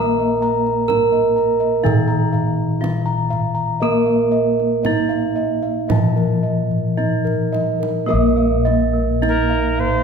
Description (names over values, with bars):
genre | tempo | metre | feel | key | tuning
Javanese gamelan | 53-65 BPM | 4/4 | straight | unclear | A4 = 440 Hz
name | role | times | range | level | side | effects
gamelan-type bronze metallophone | melody | 0.0-10.0 s | Bb3 to Bb4 | -20 LUFS | right 5 dB | none
gamelan-type bronze metallophone | accompaniment | 0.0-10.0 s | Eb3+30c to Bb3 | -22 LUFS | left 4 dB | none
gamelan-type bossed gongs | arpeggios | 0.0-9.8 s | Bb4 to Bb5 | -23 LUFS | left 1 dB | none
gamelan-type bossed gongs | bass | 0.0-10.0 s | Bb1 to Bb4 | -22 LUFS | left 2 dB | none
kendang | percussion | 0.7-10.0 s | none | -26 LUFS | right 4 dB | none
gamelan-type bronze metallophone | arpeggios | 8.1-10.0 s | Bb4 to F5-40c | -24 LUFS | right 11 dB | none
alto recorder | second line | 9.3-10.0 s | Bb4 to Cb5+50c | -20 LUFS | right 1 dB | none
room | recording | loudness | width
wet concert hall reverb, RT60 1.9 s | recorded in a church or concert hall | -16 LUFS | side -6 dB against mid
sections
0.0-8.1 A section; 8.1-10.0 B section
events
drum fill 6.7-8.1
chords
none